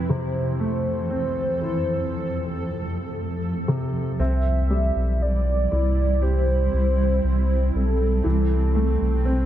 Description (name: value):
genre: pop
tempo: 59 BPM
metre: 4/4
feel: straight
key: C major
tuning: A4 = 441 Hz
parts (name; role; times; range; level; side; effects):
- warm velvety synth lead; melody; 0.0-9.5 s; A4 to E5; -28 LUFS; equal; chorus
- warm concert grand piano; accompaniment; 0.0-9.5 s; F2 to G4; -28 LUFS; equal; none
- granular cloud pad; sustained chords; 0.0-9.5 s; F2 to B4; -28 LUFS; right 1 dB; built-in reverb
- sub bass with octave; bass; 4.2-9.5 s; B1 to C2; -21 LUFS; equal; none
room: digital ambience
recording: none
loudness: -20 LUFS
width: side -11 dB against mid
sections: 0.0-4.2 A section; 4.2-9.5 B section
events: none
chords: 0.0 Fmaj7; 4.2 Cmaj7; 8.2 Amadd9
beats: | 0.10 1.11 2.12 3.16 | 4.19 5.21 6.22 7.23 | 8.25 9.27